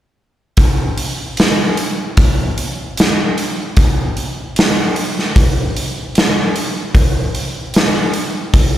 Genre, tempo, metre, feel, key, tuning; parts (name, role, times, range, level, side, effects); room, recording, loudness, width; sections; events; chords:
metal; 75 BPM; 4/4; straight
big rock drum kit; drums; 0.6-8.7 s; hi-hat, kick drum, snare drum; -13 LUFS; equal
light reverb; live gig heard through the venue's PA, recital hall reverb; -13 LUFS; side -12 dB against mid
0.6-8.8 A section